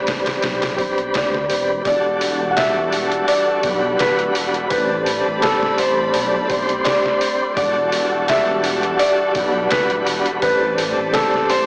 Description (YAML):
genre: trip hop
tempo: 84 BPM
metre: 4/4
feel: swing 54% on 16ths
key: E minor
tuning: A4 = 438 Hz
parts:
  - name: felt-muted upright piano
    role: melody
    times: 0.0-11.7 s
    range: A4 to F#5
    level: -20 LUFS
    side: equal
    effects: tape echo
  - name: tonewheel organ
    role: accompaniment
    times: 0.0-11.7 s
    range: G3 to C5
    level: -20 LUFS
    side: equal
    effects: fast rotary speaker, tremolo, cassette tape, tape echo
  - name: dark detuned saw bass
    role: bass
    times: 0.0-11.7 s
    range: D1 to D2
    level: -29 LUFS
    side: equal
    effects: none
  - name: trip hop sampler-style drum kit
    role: drums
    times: 0.1-11.7 s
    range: hi-hat, kick drum, snare drum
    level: -24 LUFS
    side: equal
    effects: small room ambience
  - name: rich studio string section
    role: sustained chords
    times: 1.9-11.7 s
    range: E3 to B5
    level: -25 LUFS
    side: equal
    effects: cassette tape
room: light reverb, digital ambience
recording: home recording on cassette, small speaker sound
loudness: -15 LUFS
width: side -30 dB against mid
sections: 0.0-1.9 A section; 1.9-11.7 B section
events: none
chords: 0.0 Am11; 1.9 Em11; 4.7 Am11; 7.6 Em11; 10.4 Am11